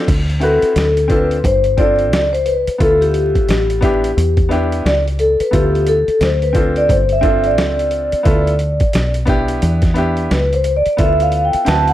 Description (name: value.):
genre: hip hop, jazz-hop.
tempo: 88 BPM.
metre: 4/4.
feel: swing 61% on 16ths.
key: D dorian.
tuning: A4 = 440 Hz.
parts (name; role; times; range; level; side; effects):
clear grand piano; accompaniment; 0.0-11.9 s; B3 to B4; -20 LUFS; equal; none.
deep dub fingered electric bass; bass; 0.1-11.9 s; G1 to E2; -18 LUFS; equal; tube saturation.
boom bap sampler-style drum kit; drums; 0.1-11.9 s; crash cymbal, hi-hat, kick drum, snare drum; -18 LUFS; equal; none.
vibraphone with soft mallets; melody; 0.4-11.9 s; G4 to A5; -16 LUFS; left 1 dB; none.
room: little or no reverb.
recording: dry, gritty hardware recording, vinyl crackle.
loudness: -12 LUFS.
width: side -13 dB against mid.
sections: 0.1-11.9 A section.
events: vibraphone solo 0.1-11.9.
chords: 0.1 Dsus2; 0.8 D5; 1.4 G7sus4; 2.8 Dm69; 4.2 Em7; 5.5 Dm69; 6.2 D5; 6.9 G7sus4; 8.3 Dm69; 9.6 Em7; 11.0 Dm69.